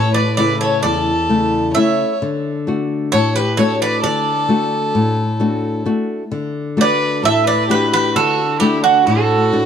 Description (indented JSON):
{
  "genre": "greek folk, Greek bouzouki band",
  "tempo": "131 BPM (eighths)",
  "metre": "9/8",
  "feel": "straight",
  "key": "D major",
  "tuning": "A4 = 440 Hz",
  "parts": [
    { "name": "Greek bouzouki", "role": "melody", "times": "0.0-9.7 s", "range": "F#4 to E5", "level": "-17 LUFS", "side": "right 4 dB", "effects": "none" },
    { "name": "rich violin", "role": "second line", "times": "0.0-9.7 s", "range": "D4 to C#5", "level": "-21 LUFS", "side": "left 1 dB", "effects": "none" },
    { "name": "nylon-string guitar", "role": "accompaniment", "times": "0.0-9.7 s", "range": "E2 to F#4", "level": "-17 LUFS", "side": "left 2 dB", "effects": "none" }
  ],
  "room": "moderate plate reverb, RT60 2.9 s",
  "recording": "dark, warm production",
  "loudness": "-14 LUFS",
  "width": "side -8 dB against mid",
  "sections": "0.0-6.3 A section; 6.3-9.7 B section",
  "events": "none",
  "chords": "0.0 A; 2.2 D"
}